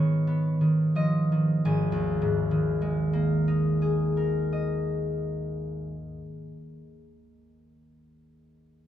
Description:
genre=classical, solo harp piece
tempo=31 BPM (dotted quarters)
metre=6/8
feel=rubato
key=G# minor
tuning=A4 = 440 Hz
part: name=concert harp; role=solo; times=0.0-7.0 s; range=G#1 to G#5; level=-24 LUFS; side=equal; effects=none
room=wet recital hall reverb, RT60 1.6 s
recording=dark, warm production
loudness=-24 LUFS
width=side -11 dB against mid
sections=0.0-1.7 A section; 1.7-5.5 B section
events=slowing down 0.0-1.7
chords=0.0 G#m; 1.7 G#madd9

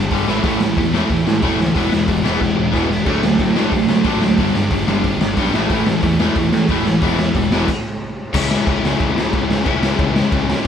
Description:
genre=punk rock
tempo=182 BPM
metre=4/4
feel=straight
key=unclear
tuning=A4 = 440 Hz
part: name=distorted electric guitar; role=riff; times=0.0-7.7 s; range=E2 to D4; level=-21 LUFS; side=right 7 dB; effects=distortion
part: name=heavy high-gain guitar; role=riff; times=0.0-10.7 s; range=G2 to E4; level=-24 LUFS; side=left 1 dB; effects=distortion
part: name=overdriven electric guitar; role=riff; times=0.0-10.7 s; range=G2 to E4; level=-20 LUFS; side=left 7 dB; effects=none
part: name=fuzz picked electric bass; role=bass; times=0.0-10.5 s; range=E1 to D3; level=-23 LUFS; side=equal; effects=overdrive
part: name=raw garage drum kit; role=drums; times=0.1-10.7 s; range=crash cymbal, hi-hat, kick drum, ride cymbal, snare drum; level=-19 LUFS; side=equal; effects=none
room=light reverb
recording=band playing live in one room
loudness=-14 LUFS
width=side -8 dB against mid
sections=0.0-8.3 A section; 8.3-10.7 B section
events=drum fill 2.4-3.1; stop 7.7-8.3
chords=0.3 A; 1.8 E; 3.1 D; 4.4 G; 5.5 A; 7.0 E; 8.3 C#m

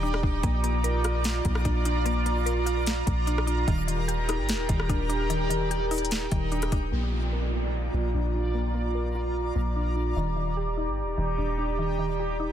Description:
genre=hip hop, atmospheric cloud-rap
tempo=148 BPM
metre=4/4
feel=half-time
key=Bb major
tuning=A4 = 445 Hz
part: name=airy breathy pad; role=sustained chords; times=0.0-12.5 s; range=F4 to D6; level=-31 LUFS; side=right 2 dB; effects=chorus, sidechain pumping, low-pass filter
part: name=mallet-like synth pluck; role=arpeggios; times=0.0-12.5 s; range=Eb3 to Bb4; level=-33 LUFS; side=left 2 dB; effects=chorus, low-pass filter, ping-pong delay
part: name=soft 808-style bass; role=bass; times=0.0-12.5 s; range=Eb1 to Bb1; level=-28 LUFS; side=equal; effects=none
part: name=backwards swelling texture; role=texture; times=0.0-12.5 s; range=Eb4 to D6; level=-37 LUFS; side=right 1 dB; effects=built-in reverb
part: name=smooth R&B drum kit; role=drums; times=0.1-6.8 s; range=hi-hat, kick drum, rim click, snare drum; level=-29 LUFS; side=equal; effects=overdrive
part: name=downlifter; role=sound effects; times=6.9-10.2 s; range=none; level=-40 LUFS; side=right 2 dB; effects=none
room=digital ambience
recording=dense, heavily limited modern master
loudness=-24 LUFS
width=side -10 dB against mid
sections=0.0-6.9 A section; 6.9-12.5 B section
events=break 0.0-0.4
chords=0.4 Bb; 3.7 Ebmaj7; 6.9 Bb; 10.2 Ebmaj7

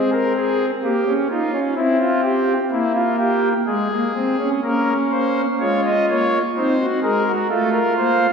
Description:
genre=classical, baroque-style 4-part fugue for pipe organ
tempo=64 BPM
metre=3/4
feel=straight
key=Bb minor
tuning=A4 = 441 Hz
part: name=pipe organ, foundations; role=solo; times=0.0-8.3 s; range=Ab3 to Eb5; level=-17 LUFS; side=equal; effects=none
room=wet church reverb, RT60 3.0 s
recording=heard from further back in the room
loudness=-17 LUFS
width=side -6 dB against mid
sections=0.0-4.6 A section; 4.6-8.3 B section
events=none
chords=0.0 Fm (rootless); 0.8 Gm7b5/Bb; 1.8 C7; 3.7 Abadd9; 4.6 Bbm; 6.6 Cm7b5; 7.5 F/A

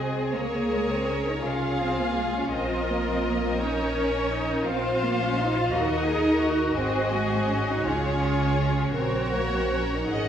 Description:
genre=classical, slow romantic movement for string orchestra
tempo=56 BPM (dotted quarters)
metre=6/8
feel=uneven beats, rubato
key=Db major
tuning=A4 = 444 Hz
part: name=rich chamber violin section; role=melody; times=0.0-10.3 s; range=Db5 to Gb5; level=-32 LUFS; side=left 2 dB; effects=none
part: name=rich chamber violin section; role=second line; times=0.0-10.3 s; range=Ab4 to Eb5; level=-31 LUFS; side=left 2 dB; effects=none
part: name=clear chamber viola section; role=accompaniment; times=0.0-10.3 s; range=Db4 to Ab4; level=-30 LUFS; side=right 1 dB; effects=none
part: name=rich chamber double bass section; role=bass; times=0.0-10.3 s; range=Ab1 to Eb2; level=-30 LUFS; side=right 1 dB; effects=none
part: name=warm chamber cello section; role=bass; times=0.0-10.3 s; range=Ab3 to F4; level=-28 LUFS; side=right 1 dB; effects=none
room=wet scoring stage reverb, RT60 1.5 s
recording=recorded in a church or concert hall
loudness=-23 LUFS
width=side -9 dB against mid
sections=0.0-10.3 A section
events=none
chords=0.3 Db; 2.5 Bbm; 5.7 Ebm; 6.7 Ab7; 7.8 Db; 8.9 Gb/Bb

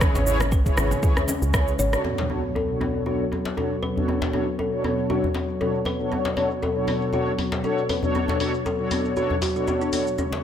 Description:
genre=afro house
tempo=118 BPM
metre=4/4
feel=swing 55% on 16ths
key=B dorian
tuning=A4 = 444 Hz
part: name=warm analog pad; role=sustained chords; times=0.0-10.4 s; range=B2 to C#5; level=-30 LUFS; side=left 1 dB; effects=chorus, tremolo, sidechain pumping
part: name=kalimba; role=arpeggios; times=0.0-10.3 s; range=F#3 to C#5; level=-28 LUFS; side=left 1 dB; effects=sidechain pumping, low-pass filter, ping-pong delay
part: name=mellow synth brass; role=stabs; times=0.0-10.1 s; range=B2 to C#5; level=-26 LUFS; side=left 1 dB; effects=chorus, phaser, sidechain pumping, ping-pong delay
part: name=woody FM bass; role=bass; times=0.0-2.0 s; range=G#1 to C#2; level=-24 LUFS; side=equal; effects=sidechain pumping
part: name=afro-pop drum kit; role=drums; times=0.0-10.3 s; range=hi-hat, rim click, shaker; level=-30 LUFS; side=equal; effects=low-pass filter on snare, studio reverb, low-pass filter on perc, low-pass filter on hats
part: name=electronic kick drum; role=drums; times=0.0-1.6 s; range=none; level=-22 LUFS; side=equal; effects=studio reverb
part: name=congas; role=percussion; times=0.0-1.9 s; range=none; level=-33 LUFS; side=right 2 dB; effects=none
part: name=djembe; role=percussion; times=0.0-10.4 s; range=none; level=-30 LUFS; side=left 2 dB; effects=none
part: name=impact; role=sound effects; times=2.0-4.1 s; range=none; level=-34 LUFS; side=right 1 dB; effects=none
room=light reverb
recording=none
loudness=-21 LUFS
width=side -9 dB against mid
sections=0.0-2.0 A section; 2.0-10.4 B section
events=filter sweep on kalimba 0.0-2.0; impact 2.0-4.1; filter sweep on drum 2.0-10.4; filter sweep on analog synth pad 2.0-10.4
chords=0.0 C#m7; 2.0 Bm7

